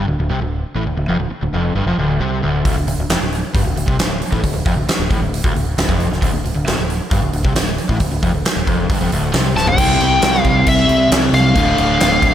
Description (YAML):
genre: hard rock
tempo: 135 BPM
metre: 4/4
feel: straight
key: D minor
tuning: A4 = 439 Hz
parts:
  - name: overdriven semi-hollow guitar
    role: riff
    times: 0.0-12.3 s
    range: D2 to C4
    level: -18 LUFS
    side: equal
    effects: none
  - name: growling fingered electric bass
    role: bass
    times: 0.0-12.3 s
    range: D1 to C2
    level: -21 LUFS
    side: equal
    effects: overdrive
  - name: huge arena drum kit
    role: drums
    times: 2.7-12.3 s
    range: crash cymbal, hi-hat, kick drum, snare drum, toms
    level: -18 LUFS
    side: equal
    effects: none
  - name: bluesy overdriven lead guitar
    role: melody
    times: 9.6-12.3 s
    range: E5 to A5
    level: -15 LUFS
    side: left 2 dB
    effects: distortion, slapback echo
room: light reverb, small room ambience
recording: none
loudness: -14 LUFS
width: side -10 dB against mid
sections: 0.0-9.8 A section; 9.8-12.3 B section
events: drum fill 9.6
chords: 0.0 Dm; 9.8 C; 11.6 Dm